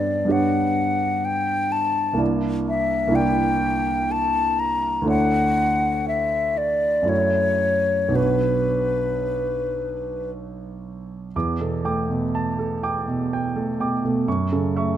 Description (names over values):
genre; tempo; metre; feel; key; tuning
classical, impressionist duo for flute and grand piano; 54-65 BPM; 3/4; rubato; E dorian from 11.3 s; A4 = 443 Hz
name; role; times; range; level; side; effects
silver concert flute; melody; 0.0-10.3 s; B4 to Bb5; -22 LUFS; left 2 dB; none
clear concert grand piano; accompaniment; 0.0-15.0 s; B1 to D6; -23 LUFS; right 2 dB; none
room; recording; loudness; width
moderate concert hall reverb, RT60 1.9 s; close, detailed microphones; -20 LUFS; side -11 dB against mid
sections
0.0-11.3 A section; 11.3-15.0 B section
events
none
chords
0.0 Gmaj7#11; 2.2 C9; 5.1 Dmaj9; 7.1 F#m7; 8.2 Bmadd9; 11.3 Em7; 14.3 F#m7